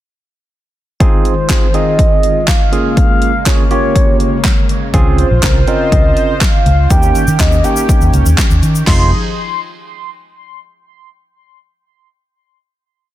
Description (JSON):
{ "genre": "dance-pop", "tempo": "122 BPM", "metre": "4/4", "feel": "straight", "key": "F minor", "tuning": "A4 = 440 Hz", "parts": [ { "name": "barky tine electric piano", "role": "accompaniment", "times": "1.0-9.1 s", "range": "Ab3 to Bb4", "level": "-19 LUFS", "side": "right 4 dB", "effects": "auto-pan, sidechain pumping" }, { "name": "chorused pulse-width pad", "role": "sustained chords", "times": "1.0-9.1 s", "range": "Db3 to C5", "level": "-21 LUFS", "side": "equal", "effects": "sidechain pumping" }, { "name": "deep house drum kit", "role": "drums", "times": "1.0-9.0 s", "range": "crash cymbal, handclaps, hi-hat, kick drum, shaker, snare drum", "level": "-12 LUFS", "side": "equal", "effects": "none" }, { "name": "mellow horn-like synth lead", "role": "melody", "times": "1.3-9.1 s", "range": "C5 to C6", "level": "-18 LUFS", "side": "equal", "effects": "chorus, ping-pong delay" }, { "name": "vintage muted fingered electric bass", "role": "bass", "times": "4.9-9.1 s", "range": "F1 to Eb3", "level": "-12 LUFS", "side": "equal", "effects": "sidechain pumping" } ], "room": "little or no reverb", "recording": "dense, heavily limited modern master", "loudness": "-9 LUFS", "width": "side -14 dB against mid", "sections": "1.0-8.9 verse; 8.9-10.8 final chord", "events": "none", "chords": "1.0 Fm7; 2.7 Bbm7; 4.9 Dbmaj7; 6.9 Eb7; 8.9 Fm7" }